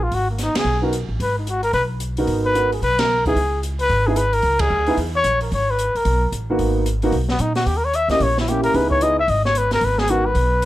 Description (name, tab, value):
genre	jazz, small-group swing and bop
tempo	223 BPM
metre	4/4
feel	swing 61% on 8ths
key	G# minor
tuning	A4 = 439 Hz
part	breathy trumpet	melody	0.0-10.7 s	A#3 to E5	-19 LUFS	left 1 dB	none
part	upright bass	bass	0.0-10.7 s	G#1 to A#2	-22 LUFS	equal	none
part	open jazz drum kit	drums	0.1-10.7 s	hi-hat, kick drum, ride cymbal, snare drum	-28 LUFS	right 1 dB	none
part	warm grand piano	accompaniment	0.8-10.2 s	A#3 to A#4	-22 LUFS	right 1 dB	none
room	light reverb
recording	none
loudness	-17 LUFS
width	side -15 dB against mid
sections	0.0-10.7 A section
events	band accent 0.5, 3.0, 4.6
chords	0.0 G#m7; 3.4 C#m7; 5.5 G#m7; 7.7 D#7b9; 8.7 C#m7; 9.8 G#m7